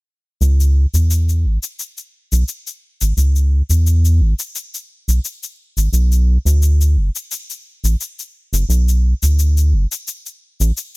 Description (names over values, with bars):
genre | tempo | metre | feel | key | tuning
sunset chillout | 87 BPM | 4/4 | swing 53% on 16ths | unclear | A4 = 440 Hz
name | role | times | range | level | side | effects
round analog bass | bass | 0.4-10.7 s | F#1 to E2 | -12 LUFS | equal | none
cabasa | drums | 0.4-10.9 s | none | -25 LUFS | left 4 dB | small room reverb
room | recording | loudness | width
little or no reverb | bright 1980s-style digital production | -14 LUFS | side -26 dB against mid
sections
0.4-11.0 A section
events
break 10.8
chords
none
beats
| 0.41 1.10 1.79 2.48 | 3.17 3.86 4.55 5.24 | 5.93 6.62 7.31 8.00 | 8.69 9.38 10.07 10.76